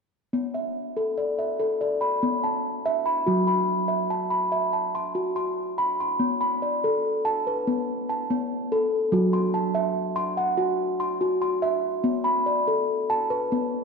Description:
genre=world meditative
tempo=144 BPM (eighths)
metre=7/8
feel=straight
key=B minor pentatonic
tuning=A4 = 440 Hz
part: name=steel tongue drum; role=arpeggios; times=0.3-13.8 s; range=F#3 to C6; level=-23 LUFS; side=equal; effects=none
room=wet concert hall reverb, RT60 2.5 s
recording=dark, warm production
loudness=-23 LUFS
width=side -4 dB against mid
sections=0.3-6.2 A section; 6.2-13.8 B section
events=none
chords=0.3 Bm; 3.3 F#m; 6.2 Bm; 9.1 F#m; 12.1 Bm

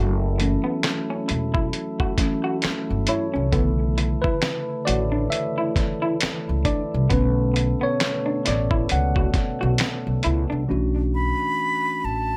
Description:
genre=R&B, neo-soul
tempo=67 BPM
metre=4/4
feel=swing 58% on 16ths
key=B minor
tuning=A4 = 441 Hz
part: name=electric guitar through a small old amp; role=second line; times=0.0-10.6 s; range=B3 to F#4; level=-31 LUFS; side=equal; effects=plate reverb, tape echo
part: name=tonewheel organ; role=sustained chords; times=0.0-10.6 s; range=B2 to A4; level=-34 LUFS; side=equal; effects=stopped rotary speaker, plate reverb
part: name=upright bass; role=bass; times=0.0-12.4 s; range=E1 to C#2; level=-26 LUFS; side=equal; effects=none
part: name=tine electric piano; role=accompaniment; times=0.4-12.4 s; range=C#3 to F#5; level=-29 LUFS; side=equal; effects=plate reverb
part: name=dusty soul sampler-style drum kit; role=drums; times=0.4-10.5 s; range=finger snaps, hi-hat, kick drum, snare drum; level=-26 LUFS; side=equal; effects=none
part: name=breathy silver concert flute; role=melody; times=11.1-12.4 s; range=A5 to B5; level=-26 LUFS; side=equal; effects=plate reverb
room=light reverb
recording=none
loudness=-23 LUFS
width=mono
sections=0.0-10.7 A section; 10.7-12.4 B section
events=tine electric piano solo 0.0-10.7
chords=0.0 F#m7; 3.5 Bm11

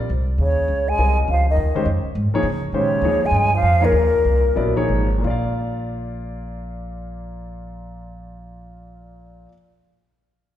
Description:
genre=jazz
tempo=174-205 BPM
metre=4/4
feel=swing 63% on 8ths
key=Bb mixolydian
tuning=A4 = 440 Hz
part: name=warm concert grand piano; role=accompaniment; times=0.0-9.5 s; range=Bb2 to F5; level=-25 LUFS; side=left 2 dB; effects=none
part: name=upright bass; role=bass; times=0.0-9.5 s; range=Ab1 to Db3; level=-22 LUFS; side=equal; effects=none
part: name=mellow hollow silver concert flute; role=melody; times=0.4-4.9 s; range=Bb4 to Ab5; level=-20 LUFS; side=left 1 dB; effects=none
part: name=bright trombone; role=second line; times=0.4-4.9 s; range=Bb2 to Ab3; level=-29 LUFS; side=right 2 dB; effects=none
room=wet recital hall reverb, RT60 1.6 s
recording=recorded in a church or concert hall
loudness=-17 LUFS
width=side -11 dB against mid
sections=0.0-5.2 A section; 5.2-8.0 B section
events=slowing down 2.7-5.2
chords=0.4 Eb9sus4; 5.2 Bb

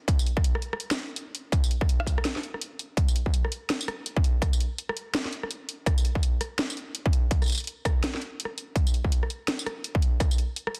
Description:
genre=drum and bass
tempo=166 BPM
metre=4/4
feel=swing 60% on 16ths, half-time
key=none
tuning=none
part: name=drum and bass drum kit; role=drums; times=0.1-10.8 s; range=hi-hat, rim click, snare drum, tambourine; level=-33 LUFS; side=equal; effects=studio ambience
part: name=electronic kick drum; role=drums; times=0.1-10.3 s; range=none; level=-26 LUFS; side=equal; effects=distortion, studio ambience
room=little or no reverb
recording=dense, heavily limited modern master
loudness=-28 LUFS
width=mono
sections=0.0-3.0 A section; 3.0-10.8 A section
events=drop 0.0-3.0, 3.0-10.8; break 2.6-3.0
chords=none

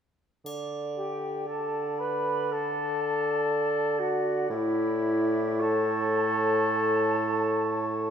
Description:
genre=classical, slow romantic movement for symphony orchestra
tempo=51-63 BPM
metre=4/4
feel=rubato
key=unclear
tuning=A4 = 439 Hz
part: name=mellow oboe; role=second line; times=0.5-8.1 s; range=C#5 to D5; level=-34 LUFS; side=right 3 dB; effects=none
part: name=warm bassoon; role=accompaniment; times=0.5-8.1 s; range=A2 to D3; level=-30 LUFS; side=right 2 dB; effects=none
part: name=triangle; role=percussion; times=0.5-2.5 s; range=none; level=-46 LUFS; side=equal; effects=none
part: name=mellow clarinet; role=second line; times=1.0-8.1 s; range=E4 to B4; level=-28 LUFS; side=left 2 dB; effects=none
part: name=mellow small flute group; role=second line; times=1.0-8.1 s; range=E5 to B5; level=-33 LUFS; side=equal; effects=none
room=wet concert hall reverb, RT60 2.0 s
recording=none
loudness=-25 LUFS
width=side -8 dB against mid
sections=0.5-8.1 A section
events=none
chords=0.5 N.C.; 4.5 A

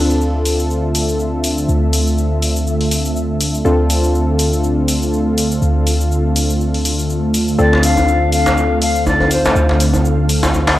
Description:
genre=afro house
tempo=122 BPM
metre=4/4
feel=swing 56% on 16ths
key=D minor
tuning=A4 = 440 Hz
part: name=ethereal airy pad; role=sustained chords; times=0.2-10.8 s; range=D3 to F5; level=-20 LUFS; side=right 1 dB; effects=ensemble chorus, built-in reverb
part: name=warm analog keys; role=stabs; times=0.0-10.8 s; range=C4 to A4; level=-19 LUFS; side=left 1 dB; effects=chorus, analog delay
part: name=warm 808-style bass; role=bass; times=0.0-10.8 s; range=D2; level=-18 LUFS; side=equal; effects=tube saturation
part: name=electronic shaker and hi-hat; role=drums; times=0.1-10.8 s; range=none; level=-22 LUFS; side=left 1 dB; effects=small room ambience
part: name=polished pan flute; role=melody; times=7.6-9.8 s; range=C5 to F5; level=-18 LUFS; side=left 3 dB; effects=analog delay
part: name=djembe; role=percussion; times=7.7-10.8 s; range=none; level=-18 LUFS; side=left 1 dB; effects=none
room=light reverb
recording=dry, gritty hardware recording, transformer saturation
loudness=-13 LUFS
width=side -14 dB against mid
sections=0.0-10.8 A section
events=filter sweep on ambient pad 0.0-10.8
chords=0.0 Dm7

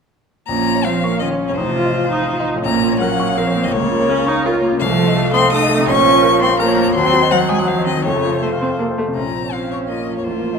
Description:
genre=quick classical-period movement for piano quartet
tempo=166 BPM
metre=3/4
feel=straight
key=Bb minor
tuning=A4 = 439 Hz
part: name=rich violin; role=melody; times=0.5-10.6 s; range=C5 to Eb6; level=-20 LUFS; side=left 7 dB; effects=none
part: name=rich cello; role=second line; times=0.5-10.6 s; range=C3 to F4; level=-20 LUFS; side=right 5 dB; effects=none
part: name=clear grand piano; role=accompaniment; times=0.5-10.6 s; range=A1 to Eb6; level=-19 LUFS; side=left 2 dB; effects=none
part: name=rich viola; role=accompaniment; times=0.5-10.6 s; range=F3 to F4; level=-21 LUFS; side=right 2 dB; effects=none
room=wet scoring stage reverb, RT60 1.7 s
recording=none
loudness=-14 LUFS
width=side -5 dB against mid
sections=0.5-9.2 A section; 9.2-10.6 A section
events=none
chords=0.5 Bbm; 1.6 F7/A; 2.7 Bbm; 3.7 Bbm/Db; 4.8 F7/C; 5.9 Bbm; 7.0 Cdim/Eb; 8.1 F; 9.2 Bbm

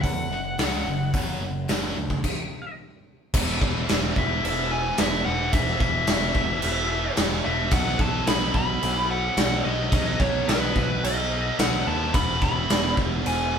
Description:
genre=hard rock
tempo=109 BPM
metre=4/4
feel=straight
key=unclear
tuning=A4 = 440 Hz
part: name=dark smooth lead guitar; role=melody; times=0.0-13.6 s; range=B4 to B5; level=-27 LUFS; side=left 1 dB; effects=overdrive
part: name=overdriven picked electric bass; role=bass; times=0.0-13.6 s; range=E1 to E2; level=-29 LUFS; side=equal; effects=none
part: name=big rock drum kit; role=drums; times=0.0-13.4 s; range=crash cymbal, hi-hat, kick drum, snare drum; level=-24 LUFS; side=equal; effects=none
part: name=heavy high-gain guitar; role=riff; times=0.1-13.6 s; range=E2 to B3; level=-29 LUFS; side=right 1 dB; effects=distortion
room=moderate studio reverb, RT60 0.7 s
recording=band playing live in one room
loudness=-21 LUFS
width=side -7 dB against mid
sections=0.0-3.3 A section; 3.3-13.6 B section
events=stop 2.2-3.3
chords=0.0 F#5; 2.2 N.C.; 3.3 E5; 7.7 B; 12.1 E

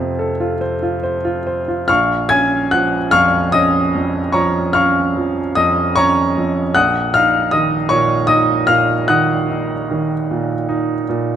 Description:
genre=classical, romantic nocturne for solo piano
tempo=46-53 BPM (dotted quarters)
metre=12/8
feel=rubato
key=Bb minor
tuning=A4 = 440 Hz
part: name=clear baby grand piano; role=solo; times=0.0-11.4 s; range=Bb1 to Ab6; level=-14 LUFS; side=equal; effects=none
room=moderate recital hall reverb, RT60 1.6 s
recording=close, detailed microphones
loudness=-14 LUFS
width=side -9 dB against mid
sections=0.0-1.9 A section; 1.9-11.4 B section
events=none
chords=0.0 F; 1.9 Bbm; 6.8 Ebm/Bb

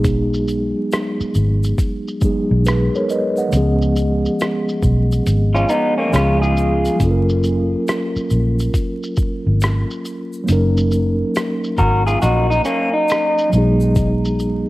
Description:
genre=lo-fi hip hop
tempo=69 BPM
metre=4/4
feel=swing 65% on 16ths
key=unclear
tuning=A4 = 435 Hz
part: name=mellow tine electric piano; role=accompaniment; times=0.0-14.7 s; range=Fb3 to F#5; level=-20 LUFS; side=equal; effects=medium stereo tremolo, cassette tape
part: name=vintage muted fingered electric bass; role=bass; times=0.0-14.6 s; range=Gb1 to Db2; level=-17 LUFS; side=equal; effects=none
part: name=lo-fi sampler-style drum kit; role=drums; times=0.0-14.7 s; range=hi-hat, kick drum, rim click, shaker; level=-22 LUFS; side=equal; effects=vintage 12-bit sampler grit, cassette tape
part: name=egg shaker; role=percussion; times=0.0-14.7 s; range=none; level=-42 LUFS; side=left 3 dB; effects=none
part: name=electric guitar through a small old amp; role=second line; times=5.5-13.5 s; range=Bb3 to Bb4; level=-18 LUFS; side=equal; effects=cassette tape, analog delay
room=light reverb, digital ambience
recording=home recording on cassette, vinyl crackle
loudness=-15 LUFS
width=side -18 dB against mid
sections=0.0-14.7 A section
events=none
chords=0.0 B6; 3.5 Db7; 7.0 Gbmaj7; 10.5 Ebm7/Gb; 13.5 B6

